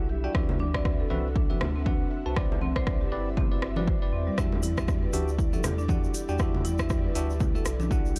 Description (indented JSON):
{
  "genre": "afro house",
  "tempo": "119 BPM",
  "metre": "4/4",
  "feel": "swing 58% on 16ths",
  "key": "E minor",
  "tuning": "A4 = 440 Hz",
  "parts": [
    { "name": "ethereal airy pad", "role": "sustained chords", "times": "0.0-8.2 s", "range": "G3 to F#5", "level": "-44 LUFS", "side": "equal", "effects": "ensemble chorus, built-in reverb, tremolo, sidechain pumping" },
    { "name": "bell-like tine electric piano", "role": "stabs", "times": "0.0-8.1 s", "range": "C4 to A5", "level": "-38 LUFS", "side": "equal", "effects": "sidechain pumping, dub echo" },
    { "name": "warm sub bass", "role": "bass", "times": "0.0-8.2 s", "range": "G1 to E2", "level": "-33 LUFS", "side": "equal", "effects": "tube saturation, sidechain pumping" },
    { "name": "marimba with medium mallets", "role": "arpeggios", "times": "0.1-8.2 s", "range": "G3 to E5", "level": "-36 LUFS", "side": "equal", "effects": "sidechain pumping, dub echo" },
    { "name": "afro-pop drum kit", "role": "drums", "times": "0.3-8.2 s", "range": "hi-hat, rim click", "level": "-39 LUFS", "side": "equal", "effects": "none" },
    { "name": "electronic kick drum", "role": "drums", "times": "0.3-8.0 s", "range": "none", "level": "-30 LUFS", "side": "equal", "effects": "overdrive" },
    { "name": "congas", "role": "percussion", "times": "0.3-7.9 s", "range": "none", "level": "-38 LUFS", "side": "equal", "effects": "none" },
    { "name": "egg shaker", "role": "percussion", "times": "4.4-8.2 s", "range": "none", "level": "-46 LUFS", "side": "equal", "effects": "none" }
  ],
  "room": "light reverb",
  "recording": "dark, warm production",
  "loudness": "-27 LUFS",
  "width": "mono",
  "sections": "0.0-8.2 A section",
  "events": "none",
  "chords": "0.3 D13; 2.4 Cmaj9; 4.4 Em9",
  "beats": "| 0.35 0.85 1.35 1.86 | 2.36 2.87 3.37 3.88 | 4.38 4.88 5.39 5.89 | 6.40 6.90 7.41 7.91"
}